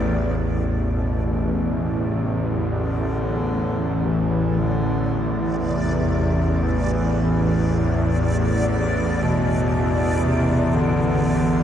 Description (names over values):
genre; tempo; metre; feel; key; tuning
dark ambient drone; free time; none; none; A minor; A4 = 440 Hz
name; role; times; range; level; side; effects
bowed-like drone; drone; 0.0-11.6 s; A1 to E2; -20 LUFS; equal; built-in reverb
backwards swelling texture; texture; 0.0-11.6 s; D5; -32 LUFS; equal; built-in reverb
warm bass clarinet; melody; 0.9-11.6 s; B2 to E3; -26 LUFS; equal; diffuse ambient delay
room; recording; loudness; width
wet huge ambient reverb, RT60 7.8 s; dreamy mix soaked in reverb; -19 LUFS; side -9 dB against mid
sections
0.4-11.6 A section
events
fade-in on synth texture 0.4-11.6; fade-in on bass clarinet 0.4-11.6; filter sweep on synth drone 0.4-11.6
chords
0.0 Asus4